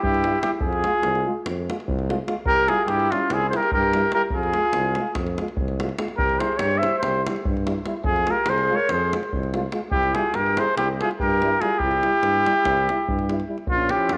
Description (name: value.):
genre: balkan folk, Balkan brass band.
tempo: 289 BPM (eighths).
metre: 9/8.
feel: straight.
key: C phrygian dominant.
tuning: A4 = 445 Hz.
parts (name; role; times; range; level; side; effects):
clear flugelhorn; melody; 0.0-14.2 s; F4 to E5; -24 LUFS; equal; none.
warm alto saxophone; second line; 0.0-14.2 s; Db4 to C5; -32 LUFS; equal; none.
warm tuba; bass; 0.0-14.2 s; Bb1 to G2; -30 LUFS; equal; none.
davul; percussion; 0.0-14.2 s; none; -32 LUFS; equal; none.
clear euphonium; accompaniment; 0.2-14.2 s; Db4 to F4; -37 LUFS; equal; none.
mellow euphonium; accompaniment; 0.2-14.2 s; F3 to Ab3; -37 LUFS; equal; none.
room: wet plate reverb, RT60 2.4 s.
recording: none.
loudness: -22 LUFS.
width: mono.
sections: 0.0-13.7 A section.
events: none.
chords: 0.0 C (rootless); 0.6 Fm; 2.5 C; 4.3 Fm; 6.2 C; 8.0 Fm; 9.9 C; 13.7 Bbm.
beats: 0.20 0.40 | 0.61 0.81 1.02 1.23 1.43 1.64 1.84 2.05 2.25 | 2.46 2.66 2.87 3.08 3.28 3.49 3.69 3.90 4.11 | 4.31 4.52 4.73 4.93 5.14 5.35 5.55 5.76 5.97 | 6.18 6.38 6.59 6.80 7.01 7.21 7.42 7.63 7.84 | 8.05 8.25 8.46 8.67 8.88 9.09 9.29 9.50 9.71 | 9.92 10.13 10.34 10.54 10.75 10.96 11.17 11.38 11.59 | 11.79 12.00 12.21 12.42 12.63 12.84 13.05 13.26 13.46 | 13.67 13.88 14.09.